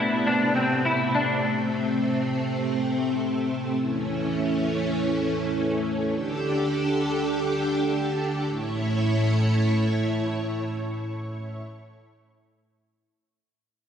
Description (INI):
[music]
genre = dream pop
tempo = free time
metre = none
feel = none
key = unclear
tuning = A4 = 438 Hz
[part]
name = string machine, full ensemble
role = sustained chords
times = 0.0-11.6 s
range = A2 to C#5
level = -24 LUFS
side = equal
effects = ensemble chorus
[part]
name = clean electric guitar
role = arpeggios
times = 0.0-1.4 s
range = C4 to E4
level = -24 LUFS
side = left 1 dB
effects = ensemble chorus, digital delay
[sound]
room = wet lush hall reverb, RT60 2.1 s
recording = none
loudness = -23 LUFS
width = side -8 dB against mid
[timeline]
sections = 0.0-8.5 A section; 8.5-10.8 B section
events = none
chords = 0.0 Amadd9; 3.8 A; 6.1 Dsus4; 8.5 A